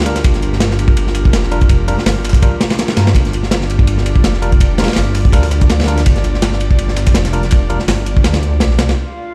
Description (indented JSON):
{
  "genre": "drum and bass, jungle",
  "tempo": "165 BPM",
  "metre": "4/4",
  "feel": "swing 54% on 16ths",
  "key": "G minor",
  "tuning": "A4 = 440 Hz",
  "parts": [
    { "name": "airy breathy pad", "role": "sustained chords", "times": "0.0-9.3 s", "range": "D4 to D5", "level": "-26 LUFS", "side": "equal", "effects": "chorus, vintage 12-bit sampler grit" },
    { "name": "dark detuned saw bass", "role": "bass", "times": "0.0-9.0 s", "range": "F1 to G2", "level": "-18 LUFS", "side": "equal", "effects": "tube saturation" },
    { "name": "crunchy breakbeat drum kit", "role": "drums", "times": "0.0-9.0 s", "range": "kick drum, ride cymbal, snare drum", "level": "-16 LUFS", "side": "equal", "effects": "none" },
    { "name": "barky tine electric piano", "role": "stabs", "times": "0.1-7.8 s", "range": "G3 to Bb4", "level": "-27 LUFS", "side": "equal", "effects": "overdrive, dub echo" },
    { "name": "breakbeat sampler-style drum kit", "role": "drums", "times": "0.1-8.9 s", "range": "hi-hat, snare drum", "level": "-31 LUFS", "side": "equal", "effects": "high-pass filter on hats, high-pass filter on snare, high-pass filter on room" },
    { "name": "drifting glass-harmonics texture", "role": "texture", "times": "9.0-9.3 s", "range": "F4 to F5", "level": "-29 LUFS", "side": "equal", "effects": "chorus, built-in reverb" }
  ],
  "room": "studio reverb",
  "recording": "played on a big sound system in a bare room, stone room reverb",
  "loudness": "-13 LUFS",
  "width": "mono",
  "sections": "0.0-9.0 A section",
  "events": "drop 0.0-9.0",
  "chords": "0.0 Gm7",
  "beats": "| 0.24 0.60 0.97 1.33 | 1.70 2.06 2.42 2.79 | 3.15 3.51 3.88 4.24 | 4.61 4.97 5.33 5.70 | 6.06 6.42 6.79 7.15 | 7.51 7.88 8.24 8.61 | 8.97 9.33"
}